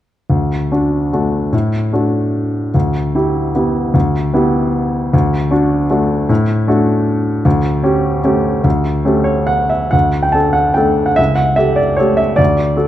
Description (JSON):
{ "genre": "classical, piano waltz", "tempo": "131-164 BPM", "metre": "3/4", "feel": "rubato", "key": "D major", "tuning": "A4 = 435 Hz", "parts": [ { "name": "clear baby grand piano", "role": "solo", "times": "0.3-12.9 s", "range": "C#2 to A5", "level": "-12 LUFS", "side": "equal", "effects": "none" } ], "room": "moderate recital hall reverb, RT60 1.4 s", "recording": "dark, warm production", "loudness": "-12 LUFS", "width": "side -12 dB against mid", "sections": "0.3-9.9 A section; 9.9-12.9 B section", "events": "none", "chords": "0.3 D; 2.7 Em7/D; 5.1 D; 7.5 A7/D; 9.9 D5; 11.2 A7/C#" }